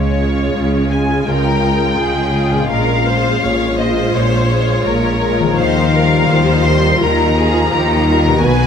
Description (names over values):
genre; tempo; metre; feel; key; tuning
cinematic, emotional film score for orchestra; 84 BPM; 4/4; rubato; unclear; A4 = 440 Hz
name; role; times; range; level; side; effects
rich symphonic violin section; melody; 0.0-8.7 s; Db5 to C6; -20 LUFS; left 2 dB; none
concert harp; arpeggios; 0.0-8.7 s; Bb2 to Gb4; -22 LUFS; left 8 dB; none
rich symphonic cello section; bass; 0.0-8.7 s; Bb2 to Eb3; -19 LUFS; equal; none
rich symphonic double bass section; bass; 0.0-8.7 s; Bb1 to Eb2; -19 LUFS; right 2 dB; none
warm symphonic viola section; accompaniment; 0.2-8.7 s; F3 to Gb4; -19 LUFS; equal; none
bright symphonic violin section; second line; 1.3-8.7 s; G4 to Db5; -20 LUFS; left 3 dB; none
room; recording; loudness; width
moderate recital hall reverb, RT60 1.6 s; none; -12 LUFS; side -7 dB against mid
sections
0.0-8.7 A section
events
none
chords
0.0 Db; 2.7 Bbm7; 5.6 Ebadd9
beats
0.54 1.27 1.99 | 2.70 3.42 4.14 4.86 | 5.58 6.30 7.01 7.72 | 8.43